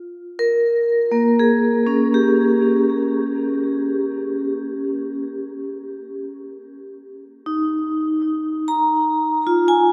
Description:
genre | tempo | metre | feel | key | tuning
ambient | free time | none | none | unclear | A4 = 441 Hz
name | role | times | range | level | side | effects
vibraphone with medium hard mallets | solo | 0.0-9.9 s | Bb3 to Bb5 | -20 LUFS | equal | diffuse ambient delay
room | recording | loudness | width
wet huge ambient reverb, RT60 7.5 s | none | -19 LUFS | mono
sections
0.0-9.9 A section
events
none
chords
0.0 Absus2; 3.2 N.C.; 7.2 Bb5

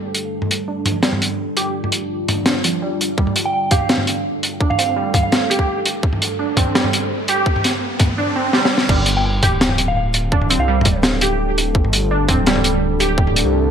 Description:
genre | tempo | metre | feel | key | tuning
half-time drum and bass | 168 BPM | 4/4 | half-time | unclear | A4 = 440 Hz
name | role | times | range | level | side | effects
deep dark ambient pad | sustained chords | 0.0-13.7 s | G3 to C5 | -25 LUFS | equal | chorus, built-in reverb, sidechain pumping
crunchy breakbeat drum kit | drums | 0.1-13.4 s | crash cymbal, hi-hat, shaker, snare drum, toms | -19 LUFS | equal | gated reverb
warbly dusty pluck | arpeggios | 0.7-13.1 s | F3 to G4 | -22 LUFS | right 3 dB | wide subtle chorus, cassette tape, digital delay
electronic kick drum | drums | 3.2-13.3 s | none | -17 LUFS | equal | overdrive
riser | sound effects | 5.7-8.9 s | none | -30 LUFS | right 1 dB | none
soft synth bell | melody | 3.5-5.3, 9.2-11.0 s | F5 to G5 | -23 LUFS | right 2 dB | chorus, vintage 12-bit sampler grit, low-pass filter, ping-pong delay
dark detuned saw bass | bass | 8.9-13.7 s | D1 to C2 | -20 LUFS | equal | none
room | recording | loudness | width
moderate plate reverb, RT60 1.5 s, small room ambience | bright 1980s-style digital production | -15 LUFS | side -8 dB against mid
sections
0.0-8.9 A section; 8.9-13.7 B section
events
build-up 0.0-8.9; filter sweep on synth pluck 0.0-8.9; riser 5.7-8.9; drum fill 8.5-8.9; drop 8.9-13.7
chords
0.0 G5

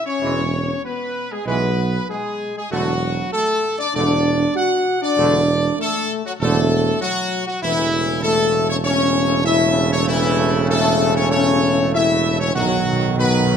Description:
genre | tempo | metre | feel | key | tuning
classical | 97 BPM | 4/4 | straight | unclear | A4 = 439 Hz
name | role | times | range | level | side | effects
bright trumpet section | melody | 0.0-13.6 s | E4 to F#5 | -21 LUFS | right 1 dB | none
dark French horn section | sustained chords | 0.0-13.6 s | E3 to F#4 | -22 LUFS | left 5 dB | none
bright trombone section | sustained chords | 0.2-13.6 s | C#3 to A3 | -25 LUFS | right 3 dB | none
mellow tuba | bass | 0.2-13.6 s | E1 to B1 | -21 LUFS | right 4 dB | none
timpani | percussion | 12.6-13.6 s | B2 | -29 LUFS | right 1 dB | none
room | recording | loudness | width
moderate scoring stage reverb, RT60 1.6 s | close, detailed microphones | -16 LUFS | side -7 dB against mid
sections
0.0-13.6 A section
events
timpani fill 12.5-13.6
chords
0.2 E; 2.7 D/E; 7.6 A/E; 12.5 B

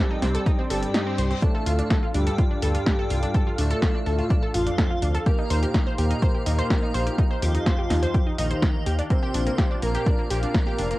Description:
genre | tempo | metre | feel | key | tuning
melodic techno | 125 BPM | 4/4 | straight | D phrygian | A4 = 439 Hz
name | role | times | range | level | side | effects
analog synth brass | melody | 0.0-11.0 s | Eb2 to C4 | -31 LUFS | equal | chorus, sidechain pumping, cassette tape, analog delay
airy dreamy lead | second line | 0.0-11.0 s | Eb4 to C5 | -32 LUFS | equal | chorus, sidechain pumping, analog delay
warm analog pad | sustained chords | 0.0-11.0 s | C4 to G5 | -34 LUFS | left 1 dB | chorus, sidechain pumping
wide unison pluck | arpeggios | 0.0-11.0 s | Bb3 to C6 | -30 LUFS | equal | sidechain pumping, analog delay
round analog bass | bass | 0.2-10.9 s | F1 to Eb2 | -24 LUFS | equal | sidechain pumping
punchy analog drum machine | drums | 0.2-11.0 s | hi-hat, snare drum | -29 LUFS | equal | overdrive, sidechain pumping on hats
electronic kick drum | drums | 0.5-10.6 s | none | -22 LUFS | equal | overdrive
reverse cymbal | sound effects | 0.8-1.4 s | none | -41 LUFS | left 4 dB | none
room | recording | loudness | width
little or no reverb | home recording on cassette | -20 LUFS | side -18 dB against mid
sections
0.0-11.0 A section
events
reverse cymbal 0.8-1.4; kick drops out 0.9-1.4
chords
0.0 Cmadd9; 1.4 Dm; 5.3 Ebadd9; 9.1 Bbsus2

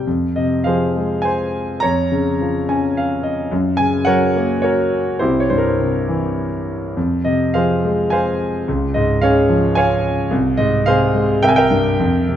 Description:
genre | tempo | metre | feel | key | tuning
classical, lyrical solo piano | 98-112 BPM | 3/4 | rubato | F minor | A4 = 440 Hz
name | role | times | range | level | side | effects
clear concert grand piano | solo | 0.0-12.4 s | C2 to Bb5 | -15 LUFS | equal | none
room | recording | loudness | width
moderate recital hall reverb, RT60 1.7 s | dark, warm production | -15 LUFS | side -10 dB against mid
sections
0.1-12.4 A section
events
grand piano fill 2.4-3.5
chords
0.1 Fm; 1.8 Bbm/F; 3.5 Gb; 5.2 C; 7.0 Fm; 8.7 Db; 10.3 Fm/C; 11.4 C7

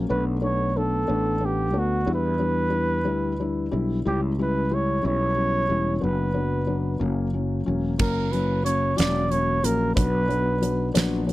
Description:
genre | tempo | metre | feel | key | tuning
six-eight pop ballad | 61 BPM (dotted quarters) | 6/8 | straight | B minor | A4 = 439 Hz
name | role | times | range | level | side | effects
felt-muted upright piano | accompaniment | 0.0-11.3 s | F#3 to E4 | -26 LUFS | left 3 dB | none
fretless electric bass | bass | 0.0-11.3 s | E1 to E2 | -26 LUFS | right 1 dB | none
warm flugelhorn | melody | 0.1-10.9 s | F#4 to D5 | -26 LUFS | right 2 dB | none
huge arena drum kit | drums | 8.0-11.3 s | crash cymbal, hi-hat, kick drum, snare drum | -26 LUFS | right 1 dB | none
room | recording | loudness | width
little or no reverb | dry, close 1970s-style studio recording | -21 LUFS | side -16 dB against mid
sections
0.0-8.0 A section; 8.0-11.3 B section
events
none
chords
0.1 Bm7; 2.1 Em7; 4.0 C#dim; 6.0 Bm/F#; 7.0 F#; 10.0 Bm

